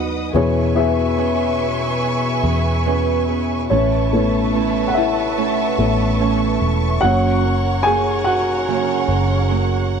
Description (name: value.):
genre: pop.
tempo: 72 BPM.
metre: 4/4.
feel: straight.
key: A major.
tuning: A4 = 440 Hz.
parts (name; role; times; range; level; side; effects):
dark upright piano; accompaniment; 0.0-10.0 s; B2 to G#5; -19 LUFS; left 3 dB; none.
warm studio string section; sustained chords; 0.0-10.0 s; A#4 to D#6; -24 LUFS; right 2 dB; none.
fingerpicked old ladder-braced acoustic guitar; arpeggios; 0.0-10.0 s; F#2 to B4; -23 LUFS; right 16 dB; none.
vintage muted fingered electric bass; bass; 0.0-10.0 s; E1 to E2; -21 LUFS; equal; none.
room: little or no reverb.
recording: dry, close 1970s-style studio recording.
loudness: -16 LUFS.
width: side -6 dB against mid.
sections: 0.0-3.7 A section; 3.7-10.0 B section.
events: upright piano solo 3.7-10.0.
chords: 0.3 E6; 3.7 Aadd9; 7.0 F#.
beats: | 0.34 1.17 2.01 2.86 | 3.71 4.55 5.38 6.20 | 7.03 7.86 8.68 9.49.